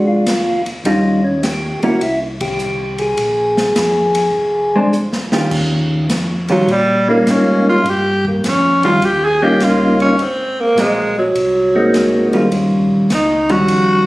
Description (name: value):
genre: soul jazz organ trio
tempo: 103 BPM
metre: 4/4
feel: swing 67% on 8ths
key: Eb mixolydian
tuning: A4 = 440 Hz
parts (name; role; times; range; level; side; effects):
- percussive tonewheel organ; melody; 0.0-12.5 s; G3 to Ab4; -15 LUFS; left 1 dB; slow rotary speaker
- vintage hollow-body jazz guitar; accompaniment; 0.0-14.1 s; Eb3 to G4; -16 LUFS; equal; none
- mellow tonewheel organ; bass; 0.0-14.1 s; F1 to Bb2; -24 LUFS; equal; slow rotary speaker
- swinging big-band drum kit; drums; 0.3-13.9 s; crash cymbal, hi-hat, kick drum, ride cymbal, snare drum; -23 LUFS; equal; none
- growling tenor saxophone; melody; 6.5-14.1 s; Gb3 to Ab4; -14 LUFS; right 1 dB; none
room: moderate club reverb, RT60 0.8 s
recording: recorded on a phone in the room, studio reverb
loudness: -12 LUFS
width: side -18 dB against mid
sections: 0.0-5.5 A section; 5.5-14.1 B section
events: band accent 2.3; drum fill 4.9-5.5; tenor saxophone solo 5.5-14.1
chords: 0.0 Bb9 (rootless); 0.9 Eb9; 2.0 C5; 3.2 Bb7(no3); 5.5 Eb9; 10.2 Ab9; 12.5 Eb9